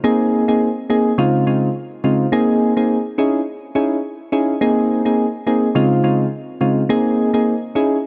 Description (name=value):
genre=afrobeats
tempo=105 BPM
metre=4/4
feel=swing 55% on 16ths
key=Ab major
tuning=A4 = 442 Hz
part: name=soft electric-piano-like synth keys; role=solo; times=0.0-8.0 s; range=Db3 to Ab4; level=-17 LUFS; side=equal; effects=chorus
room=light reverb, digital ambience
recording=none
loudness=-17 LUFS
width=mono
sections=0.0-8.1 A section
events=none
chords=0.0 Abadd9; 1.2 Dbmaj7; 2.3 Abadd9; 3.2 Dbmadd9; 4.6 Abadd9; 5.8 Dbmaj7; 6.9 Abadd9